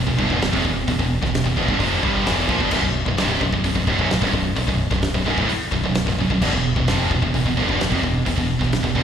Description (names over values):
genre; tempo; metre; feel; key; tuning
heavy metal; 130 BPM; 4/4; straight; unclear; A4 = 441 Hz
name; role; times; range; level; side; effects
distorted electric guitar; riff; 0.0-9.0 s; B1 to G3; -27 LUFS; equal; distortion, slapback echo
heavy high-gain guitar; riff; 0.0-9.0 s; B1 to G3; -24 LUFS; left 8 dB; distortion, slapback echo
high-gain distorted guitar; riff; 0.0-9.0 s; B1 to G3; -23 LUFS; right 8 dB; distortion, slapback echo
growling fingered electric bass; bass; 0.0-9.0 s; B0 to A#1; -25 LUFS; equal; overdrive
modern studio drum kit; drums; 0.1-9.0 s; crash cymbal, hi-hat, kick drum, snare drum; -25 LUFS; equal; none
room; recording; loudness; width
studio ambience; live gig heard through the venue's PA, recital hall reverb; -18 LUFS; side -8 dB against mid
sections
0.0-9.0 A section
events
none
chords
0.0 E5; 2.7 Bm; 6.4 E5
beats
0.42 | 0.88 1.34 1.80 2.26 | 2.73 3.19 3.65 4.11 | 4.57 5.03 5.50 5.96 | 6.42 6.88 7.34 7.80 | 8.27 8.73